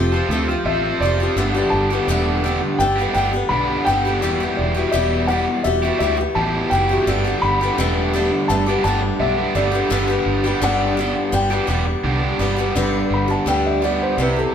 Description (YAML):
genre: folk rock and heartland rock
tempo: 84 BPM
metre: 4/4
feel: straight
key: G major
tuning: A4 = 438 Hz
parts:
  - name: dark baby grand piano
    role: melody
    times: 0.0-14.5 s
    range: A4 to B5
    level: -22 LUFS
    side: left 1 dB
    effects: none
  - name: picked swing-style acoustic guitar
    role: accompaniment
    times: 0.0-14.5 s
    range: G2 to G4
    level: -22 LUFS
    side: left 3 dB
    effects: none
  - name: raw garage guitar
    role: riff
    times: 0.0-14.5 s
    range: E2 to A4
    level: -21 LUFS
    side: right 2 dB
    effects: overdrive
  - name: fingered electric bass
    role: bass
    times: 0.0-14.4 s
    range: E1 to D2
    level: -23 LUFS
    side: right 1 dB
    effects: none
room: wet large studio reverb, RT60 1.5 s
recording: band playing live in one room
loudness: -16 LUFS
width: side -8 dB against mid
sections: 0.0-12.8 A section; 12.8-14.5 B section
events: grand piano solo 12.8-14.5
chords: 0.0 Fadd9; 1.4 Gadd9; 4.2 Emadd9; 7.1 Gadd9; 9.9 G